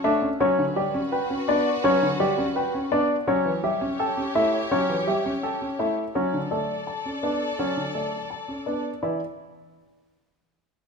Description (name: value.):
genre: classical, minimalist pattern music.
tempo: 167 BPM.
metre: 4/4.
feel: straight.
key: unclear.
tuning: A4 = 439 Hz.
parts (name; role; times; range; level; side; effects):
dark baby grand piano; melody; 0.0-9.2 s; C#5 to A5; -26 LUFS; left 6 dB; none.
dark grand piano; accompaniment; 0.0-9.2 s; D3 to C#4; -29 LUFS; right 2 dB; none.
rich studio string section; sustained chords; 0.0-8.8 s; F#4 to D5; -32 LUFS; left 2 dB; none.
clear concert grand piano; arpeggios; 0.0-9.2 s; C#4 to B4; -28 LUFS; right 6 dB; none.
room: moderate recital hall reverb, RT60 1.5 s.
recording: minimal, uncompressed stereo recording.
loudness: -22 LUFS.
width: side -5 dB against mid.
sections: 0.0-9.0 A section; 9.0-10.5 B section.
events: none.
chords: 0.4 Gmaj7; 3.3 A7; 6.2 Bm7; 9.0 N.C..